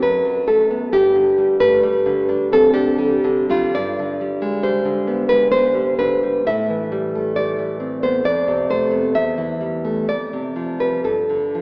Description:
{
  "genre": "romantic piece for solo classical guitar",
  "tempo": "66 BPM",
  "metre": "3/4",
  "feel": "uneven beats, rubato",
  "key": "unclear",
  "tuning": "A4 = 436 Hz",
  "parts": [
    { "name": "nylon-string guitar", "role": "solo", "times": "0.0-11.6 s", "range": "E2 to E5", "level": "-16 LUFS", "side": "equal", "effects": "none" }
  ],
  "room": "wet concert hall reverb, RT60 2.3 s",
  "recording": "recorded in a church or concert hall, AM radio sound",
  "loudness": "-16 LUFS",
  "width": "side -32 dB against mid",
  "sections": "0.0-11.6 A section",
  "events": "none",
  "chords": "0.0 F#madd11; 0.9 G; 6.5 Am7; 8.2 F; 9.1 Emadd11; 10.1 Dm7/F; 11.0 G5"
}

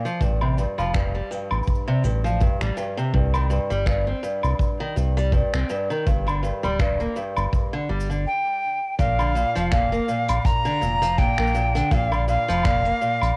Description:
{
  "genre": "folktronica",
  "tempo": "82 BPM",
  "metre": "4/4",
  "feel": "swing 56% on 16ths",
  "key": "Bb major",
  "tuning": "A4 = 440 Hz",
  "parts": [
    { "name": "picked acoustic archtop guitar", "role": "arpeggios", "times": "0.0-13.4 s", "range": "G2 to C4", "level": "-28 LUFS", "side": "equal", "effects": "cassette tape, analog delay" },
    { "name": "vintage brush drum kit", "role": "drums", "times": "0.1-13.3 s", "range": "cabasa, finger snaps, hi-hat, woodblock", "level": "-34 LUFS", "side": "equal", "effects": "cassette tape" },
    { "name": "round analog bass", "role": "bass", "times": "0.2-13.3 s", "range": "D1 to C2", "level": "-27 LUFS", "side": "equal", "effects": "none" },
    { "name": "kick drum", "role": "drums", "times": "0.2-12.8 s", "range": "none", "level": "-26 LUFS", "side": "equal", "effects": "cassette tape" },
    { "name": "breathy bright jazz flute", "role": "melody", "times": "8.3-13.4 s", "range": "F5 to Bb5", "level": "-26 LUFS", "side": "equal", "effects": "none" }
  ],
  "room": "light reverb",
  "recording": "home recording on cassette",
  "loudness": "-23 LUFS",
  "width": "mono",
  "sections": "0.0-9.0 A section; 9.0-13.4 B section",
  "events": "none",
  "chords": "0.2 Fadd9; 3.1 Cm; 6.1 G5; 9.0 Bb"
}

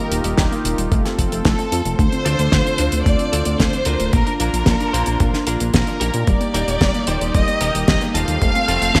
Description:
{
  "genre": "italo disco",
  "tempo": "112 BPM",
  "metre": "4/4",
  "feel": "straight",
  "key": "unclear",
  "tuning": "A4 = 440 Hz",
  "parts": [
    { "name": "rich chamber violin section", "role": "melody", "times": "0.0-9.0 s", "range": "A4 to F5", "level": "-25 LUFS", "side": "equal", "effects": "delay" },
    { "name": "warm analog pad", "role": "sustained chords", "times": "0.0-9.0 s", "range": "D3 to C5", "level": "-29 LUFS", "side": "equal", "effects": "chorus" },
    { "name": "warbly dusty pluck", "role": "arpeggios", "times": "0.0-9.0 s", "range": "G3 to F4", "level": "-28 LUFS", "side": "equal", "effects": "chorus, delay" },
    { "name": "fat analog bass", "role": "bass", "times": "0.1-9.0 s", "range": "D1 to Bb2", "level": "-24 LUFS", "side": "equal", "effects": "none" },
    { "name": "damped 70s drum kit", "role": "drums", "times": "0.1-9.0 s", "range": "hi-hat, snare drum", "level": "-25 LUFS", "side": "equal", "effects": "small room reverb" },
    { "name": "electronic kick drum", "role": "drums", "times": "0.4-9.0 s", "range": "none", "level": "-22 LUFS", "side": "equal", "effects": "overdrive, small room reverb" },
    { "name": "direct-recorded clean electric guitar", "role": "stabs", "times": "2.3-9.0 s", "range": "A3 to C5", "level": "-30 LUFS", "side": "equal", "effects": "lush chorus, low-pass filter" }
  ],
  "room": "moderate lush hall reverb, RT60 1.6 s",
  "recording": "bright 1980s-style digital production",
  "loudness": "-18 LUFS",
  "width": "mono",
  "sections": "0.0-2.0 A section; 2.0-9.0 B section",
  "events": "none",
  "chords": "0.0 Ebadd9; 0.9 F; 2.0 Dm7; 4.1 Bb; 6.3 Eb; 8.4 F"
}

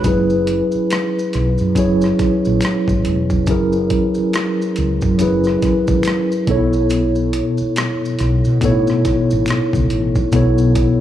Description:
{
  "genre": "R&B, neo-soul",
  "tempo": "70 BPM",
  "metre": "4/4",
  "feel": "swing 60% on 16ths",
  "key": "unclear",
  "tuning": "A4 = 440 Hz",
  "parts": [
    { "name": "mellow tine electric piano", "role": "accompaniment", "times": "0.0-11.0 s", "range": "B2 to C#5", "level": "-16 LUFS", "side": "equal", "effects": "medium stereo tremolo, slapback echo" },
    { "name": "boom bap sampler-style drum kit", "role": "drums", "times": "0.0-11.0 s", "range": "hi-hat, kick drum, rim click", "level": "-21 LUFS", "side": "equal", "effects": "overdrive" },
    { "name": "maracas and finger snaps", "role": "percussion", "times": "0.0-11.0 s", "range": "none", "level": "-35 LUFS", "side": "left 1 dB", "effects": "slapback echo" },
    { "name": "woody fretless electric bass", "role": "bass", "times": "0.1-10.9 s", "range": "E1 to B2", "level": "-19 LUFS", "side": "equal", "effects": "lush chorus" }
  ],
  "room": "light reverb",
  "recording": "live gig heard through the venue's PA, club reverb",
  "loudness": "-14 LUFS",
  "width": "side -11 dB against mid",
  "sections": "0.0-11.0 A section",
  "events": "none",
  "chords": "0.0 F#9sus4; 6.5 B9sus4"
}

